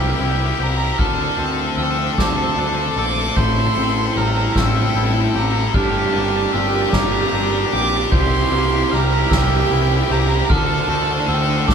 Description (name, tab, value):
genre	post-rock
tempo	50 BPM (dotted quarters)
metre	6/8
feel	straight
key	G dorian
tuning	A4 = 440 Hz
part	dark violin	melody	0.0-11.7 s	G5 to D6	-24 LUFS	right 6 dB	none
part	soft additive organ-like pad	sustained chords	0.0-11.7 s	A3 to G5	-28 LUFS	equal	ensemble chorus, built-in reverb
part	glockenspiel with soft plastic mallets	arpeggios	0.0-11.7 s	D6 to G6	-28 LUFS	right 4 dB	none
part	twangy electric guitar	arpeggios	0.0-11.7 s	G2 to A4	-26 LUFS	left 2 dB	none
part	tight distorted guitar	riff	0.0-11.7 s	D4 to A4	-23 LUFS	left 9 dB	distortion
part	growling picked electric bass	bass	0.0-11.7 s	G1 to D2	-22 LUFS	equal	overdrive
part	soft-mallet drum kit	drums	0.2-11.7 s	crash cymbal, kick drum, ride cymbal, snare drum	-23 LUFS	left 1 dB	none
part	fuzz guitar	riff	5.7-11.7 s	D4 to A4	-23 LUFS	right 9 dB	distortion
room	wet large studio reverb, RT60 1.1 s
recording	band playing live in one room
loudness	-15 LUFS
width	side -7 dB against mid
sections	0.0-11.7 A section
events	build-up 0.0-11.7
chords	0.0 C7; 1.0 Dm7; 3.4 Am7; 5.8 Gm7; 8.1 C7; 10.5 Dm7